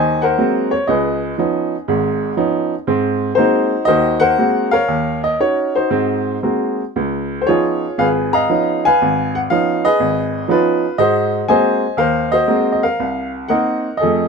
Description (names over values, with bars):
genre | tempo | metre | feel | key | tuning
solo jazz | 119 BPM | 4/4 | swing 69% on 8ths, rubato | Ab mixolydian | A4 = 441 Hz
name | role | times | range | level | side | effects
clear upright piano | solo | 0.0-14.3 s | Ab1 to Bb5 | -14 LUFS | equal | none
room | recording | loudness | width
light reverb | minimal, uncompressed stereo recording | -14 LUFS | side -5 dB against mid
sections
0.0-14.3 A section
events
none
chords
0.0 Ab9; 0.9 Db9; 2.9 Ab9; 4.9 Ebm7; 5.9 Ab9; 7.0 Db9; 11.0 Ab9; 13.0 Cm7b5